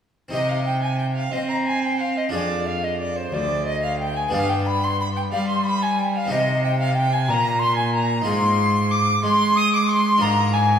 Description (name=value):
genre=classical, baroque-style sonata movement with continuo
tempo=61 BPM (dotted quarters)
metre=6/8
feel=straight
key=C minor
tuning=A4 = 442 Hz
part: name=mellow hollow concert flute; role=melody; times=0.3-10.8 s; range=C5 to Eb6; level=-23 LUFS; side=left 4 dB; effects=none
part: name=rich violin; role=second line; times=0.3-10.8 s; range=C5 to Eb6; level=-25 LUFS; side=right 4 dB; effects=none
part: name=harpsichord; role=accompaniment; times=0.3-10.8 s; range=D2 to Bb4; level=-29 LUFS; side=equal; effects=none
part: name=rich cello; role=bass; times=0.3-10.8 s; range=D2 to C4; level=-23 LUFS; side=right 1 dB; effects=none
room=wet recital hall reverb, RT60 1.3 s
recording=recorded in a church or concert hall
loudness=-19 LUFS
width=side -8 dB against mid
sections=0.3-10.8 A section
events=none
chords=0.3 Cm; 2.3 Ddim/F; 4.3 G; 6.3 Cm; 8.3 Fm7/Ab; 10.2 Bb7/Ab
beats=| 0.33 1.33 | 2.33 3.33 | 4.33 5.32 | 6.31 7.29 | 8.26 9.24 | 10.22